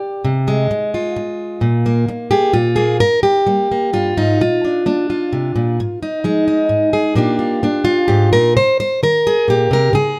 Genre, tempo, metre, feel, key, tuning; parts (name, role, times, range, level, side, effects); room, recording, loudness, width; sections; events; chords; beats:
folk, solo fingerstyle acoustic guitar; 130 BPM; 3/4; straight; A4 = 444 Hz
fingerpicked plugged-in steel-string acoustic guitar; solo; 0.0-10.2 s; G2 to D5; -16 LUFS; equal
light reverb; -16 LUFS; mono
0.0-3.0 A section; 3.0-10.2 B section
0.2 Fm/C; 1.6 Bb5; 2.5 N.C.; 3.0 Gm7; 4.4 Bbadd9; 5.8 Fm7/Ab; 7.2 Bb6; 8.6 Cm
| 0.25 0.71 1.16 | 1.62 2.08 2.54 | 3.01 3.48 3.95 | 4.41 4.87 5.33 | 5.79 6.25 6.71 | 7.17 7.63 8.09 | 8.56 9.02 9.48 | 9.94